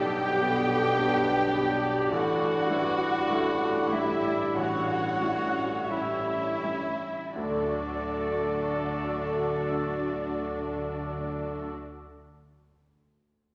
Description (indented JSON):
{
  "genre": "classical, romantic movement for piano and orchestra",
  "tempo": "38-55 BPM",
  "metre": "4/4",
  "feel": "rubato",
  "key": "D major",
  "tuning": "A4 = 440 Hz",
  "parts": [
    { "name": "clear baby grand piano", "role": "melody", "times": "0.0-13.5 s", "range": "A1 to D5", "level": "-38 LUFS", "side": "equal", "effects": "none" },
    { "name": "rich studio violin section", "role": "melody", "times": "0.0-11.7 s", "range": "D5 to G5", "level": "-40 LUFS", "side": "equal", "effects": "none" },
    { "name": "dark clarinet", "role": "second line", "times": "0.0-11.7 s", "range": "D4 to F#4", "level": "-38 LUFS", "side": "equal", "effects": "none" },
    { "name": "mellow cor anglais", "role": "second line", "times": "0.0-11.7 s", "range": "C#5 to D5", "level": "-39 LUFS", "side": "equal", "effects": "none" },
    { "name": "rich studio violin section", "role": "second line", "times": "0.0-11.7 s", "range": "E4 to G4", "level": "-41 LUFS", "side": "equal", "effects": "none" },
    { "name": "silver concert flute", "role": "second line", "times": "0.0-11.7 s", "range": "D5 to G5", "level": "-39 LUFS", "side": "equal", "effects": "none" },
    { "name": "clear bassoon", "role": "accompaniment", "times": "0.0-11.7 s", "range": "G3 to B3", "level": "-41 LUFS", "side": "equal", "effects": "none" },
    { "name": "rich studio viola section", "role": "accompaniment", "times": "0.0-11.7 s", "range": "D4 to G4", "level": "-39 LUFS", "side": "equal", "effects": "none" },
    { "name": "mellow French horn section", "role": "sustained chords", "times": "0.0-11.7 s", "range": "A3 to B4", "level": "-38 LUFS", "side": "equal", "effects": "none" },
    { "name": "mellow trombone section", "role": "sustained chords", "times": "0.0-11.7 s", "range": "G2 to D4", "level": "-42 LUFS", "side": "equal", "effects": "none" },
    { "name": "bright trumpet section", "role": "stabs", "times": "0.0-11.7 s", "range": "E4 to A4", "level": "-36 LUFS", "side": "equal", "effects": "none" },
    { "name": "clear tuba", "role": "bass", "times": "0.0-11.7 s", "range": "A1 to D2", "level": "-42 LUFS", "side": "equal", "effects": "none" },
    { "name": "rich studio double bass section", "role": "bass", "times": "0.0-11.7 s", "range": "A1 to D2", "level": "-44 LUFS", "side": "equal", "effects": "none" },
    { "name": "warm studio cello section", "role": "bass", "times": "0.0-11.7 s", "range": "A2 to D3", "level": "-44 LUFS", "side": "equal", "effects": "none" }
  ],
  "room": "wet scoring stage reverb, RT60 1.6 s",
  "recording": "none",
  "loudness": "-28 LUFS",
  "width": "mono",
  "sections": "0.0-7.4 A section; 7.4-12.6 B section",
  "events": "slowing down 0.0-7.4",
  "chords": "0.0 G/B; 2.1 A7sus4; 4.6 A7; 7.4 D"
}